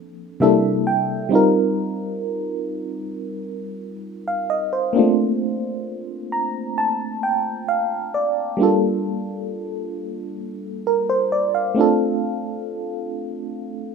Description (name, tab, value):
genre	R&B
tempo	66 BPM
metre	4/4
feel	straight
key	unclear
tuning	A4 = 440 Hz
part	FM electric piano with auto-pan	solo	0.0-13.9 s	C3 to Bb5	-20 LUFS	right 1 dB	none
room	light reverb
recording	rough home demo mix, studio ambience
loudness	-19 LUFS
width	side -5 dB against mid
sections	0.0-8.6 A section; 8.6-13.9 B section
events	FM electric piano fill 0.0-1.3, 5.9-8.6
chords	0.4 C13; 1.3 F7sus4; 5.0 Bbmaj9; 8.6 Gm7; 11.8 Dm7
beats	0.41 | 1.32 2.23 3.14 4.05 | 4.96 5.87 6.78 7.68 | 8.59 9.50 10.41 11.32 | 12.23 13.14